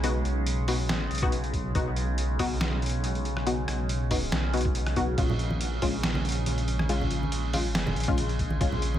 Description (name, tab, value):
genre	deep dubstep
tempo	140 BPM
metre	4/4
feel	swing 54% on 16ths, half-time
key	unclear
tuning	A4 = 440 Hz
part	overtone-sweeping drone	sustained chords	0.0-9.0 s	Db3 to Ab3	-34 LUFS	equal	chorus, built-in reverb, phaser
part	filtered dub chord stab	stabs	0.0-8.7 s	Ab3 to F#4	-32 LUFS	left 4 dB	chorus, dub echo
part	dark detuned saw bass	bass	0.0-9.0 s	Bb1 to B1	-29 LUFS	equal	none
part	trip hop sampler-style drum kit	drums	0.0-8.9 s	crash cymbal, hi-hat, rim click, snare drum	-33 LUFS	right 1 dB	none
part	electronic kick drum	drums	1.2-8.7 s	none	-28 LUFS	equal	none
part	congas	percussion	5.3-9.0 s	none	-34 LUFS	right 2 dB	none
room	light reverb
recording	none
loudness	-25 LUFS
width	side -11 dB against mid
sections	0.0-9.0 A section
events	none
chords	0.0 B; 5.2 Bbm7